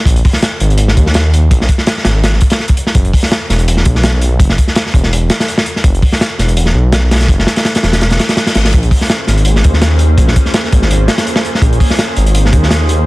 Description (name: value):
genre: drum and bass, jungle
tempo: 166 BPM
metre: 4/4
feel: swing 54% on 16ths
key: Bb minor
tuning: A4 = 438 Hz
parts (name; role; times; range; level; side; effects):
- detuned saw bass; bass; 0.1-13.1 s; E1 to Eb2; -11 LUFS; equal; tube saturation
- crunchy breakbeat drum kit; drums; 0.1-13.0 s; hi-hat, kick drum, snare drum; -11 LUFS; equal; none
- reverse cymbal; sound effects; 8.3-8.7 s; none; -26 LUFS; left 5 dB; none
- warbly tape-like pad; sustained chords; 9.0-13.1 s; Bb3 to C5; -19 LUFS; right 1 dB; chorus, built-in reverb, vintage 12-bit sampler grit
room: small room ambience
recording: dense, heavily limited modern master, vinyl crackle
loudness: -9 LUFS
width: side -20 dB against mid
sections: 0.0-13.1 A section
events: none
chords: 0.0 Absus2; 3.0 N.C.; 8.7 Bbm9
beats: | 0.06 0.42 0.79 1.15 | 1.51 1.87 2.23 2.59 | 2.95 3.32 3.68 4.04 | 4.40 4.76 5.12 5.48 | 5.85 6.21 6.57 6.93 | 7.29 7.65 8.01 8.38 | 8.74 9.10 9.46 9.82 | 10.18 10.54 10.91 11.27 | 11.63 11.99 12.35 12.71